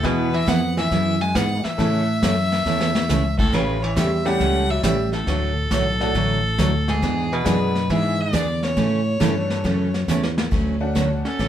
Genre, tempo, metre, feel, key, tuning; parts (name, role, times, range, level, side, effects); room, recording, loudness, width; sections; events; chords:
country, western swing; 137 BPM; 4/4; swing 68% on 8ths; D major; A4 = 440 Hz
clear fiddle; melody; 0.0-11.5 s; G#4 to G#5; -25 LUFS; left 1 dB
archtop guitar, miked and amplified; second line; 0.0-11.5 s; G#2 to C#4; -28 LUFS; right 1 dB
picked steel-string acoustic guitar; accompaniment; 0.0-11.5 s; C#3 to A4; -24 LUFS; right 2 dB
tack piano; accompaniment; 0.0-11.4 s; E3 to A4; -27 LUFS; left 2 dB
mellow fretless electric bass; bass; 0.0-11.5 s; A1 to A2; -23 LUFS; equal
vintage brush drum kit; drums; 0.0-11.5 s; brushed snare drum, crash cymbal, hi-hat, kick drum, ride cymbal, snare drum; -26 LUFS; equal
wet studio reverb, RT60 0.5 s; band playing live in one room; -18 LUFS; side -10 dB against mid
0.0-10.5 A section
drum fill 2.7-3.1, 10.1-10.5
0.0 E; 1.8 A; 3.5 A7; 5.3 D; 7.0 E7; 8.8 A; 10.5 Dmaj7